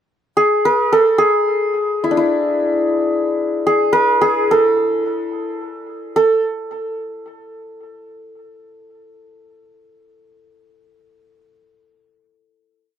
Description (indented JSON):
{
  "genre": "Persian modal ensemble",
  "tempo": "73 BPM (dotted quarters)",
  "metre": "6/8",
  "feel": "straight",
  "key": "unclear",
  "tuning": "A4 = 444 Hz",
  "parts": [
    { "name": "santur", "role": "solo", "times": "0.4-6.4 s", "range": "D4 to Bb4+45c", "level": "-15 LUFS", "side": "equal", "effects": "tape echo" }
  ],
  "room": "moderate studio reverb, RT60 0.5 s",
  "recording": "none",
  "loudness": "-14 LUFS",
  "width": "side -9 dB against mid",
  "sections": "0.0-6.1 A section; 6.1-7.8 final note",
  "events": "none",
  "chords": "none"
}